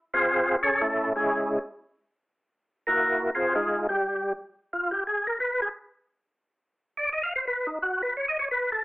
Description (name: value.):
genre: jazz.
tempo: 175 BPM.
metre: 4/4.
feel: swing 64% on 8ths.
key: unclear.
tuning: A4 = 440 Hz.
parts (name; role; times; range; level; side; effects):
percussive tonewheel organ; solo; 0.1-8.8 s; G3 to F5; -24 LUFS; equal; slow rotary speaker, overdrive, chorus vibrato.
room: wet studio reverb, RT60 0.7 s.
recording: telephone sound.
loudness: -24 LUFS.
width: side -19 dB against mid.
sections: 0.0-8.8 A section.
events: tonewheel organ solo 0.0-8.8.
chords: 0.0 C(#5, no3); 0.6 Amaj7; 2.0 N.C.; 2.6 F#7; 3.3 Fm7; 4.7 N.C..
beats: 0.25 | 0.59 0.93 1.28 1.62 | 1.96 2.30 2.65 2.99 | 3.33 3.67 4.02 4.36 | 4.70 5.04 5.39 5.73 | 6.07 6.42 6.76 7.10 | 7.44 7.79 8.13 8.47 | 8.81.